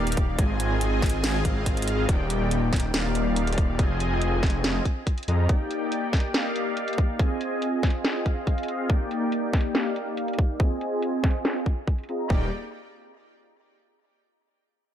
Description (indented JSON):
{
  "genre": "future bass",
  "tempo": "141 BPM",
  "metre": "4/4",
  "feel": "half-time",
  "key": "Eb major",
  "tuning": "A4 = 441 Hz",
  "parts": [
    { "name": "soft supersaw", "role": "riff", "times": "0.0-12.5 s", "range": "Bb3 to Bb5", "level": "-28 LUFS", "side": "equal", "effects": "lush chorus, sidechain pumping, low-pass filter, digital delay" },
    { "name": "wide detuned saw bass", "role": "bass", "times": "0.0-5.5, 12.3-12.5 s", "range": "Eb1 to F2", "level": "-26 LUFS", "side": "equal", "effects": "chorus, sidechain pumping" },
    { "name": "trap drum kit", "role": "drums", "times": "0.1-12.2 s", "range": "hi-hat, snare drum", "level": "-30 LUFS", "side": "equal", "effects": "low-pass filter on snare, low-pass filter on hats, low-pass filter on cymbals" },
    { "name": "electronic kick drum", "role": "drums", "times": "0.2-12.4 s", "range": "none", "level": "-23 LUFS", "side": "equal", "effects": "none" }
  ],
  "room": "digital ambience",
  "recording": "none",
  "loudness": "-23 LUFS",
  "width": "side -10 dB against mid",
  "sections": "0.0-12.3 A section; 12.3-14.0 B section",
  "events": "filter sweep on drum 0.0-12.3; filter sweep on supersaw synth 0.0-12.3",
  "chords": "0.4 Ab6; 2.1 Ebmaj7; 3.8 Fm7; 5.5 Ebmaj7; 7.2 Ab6; 8.9 Ebmaj7; 10.6 Fm7; 12.3 Ebmaj7"
}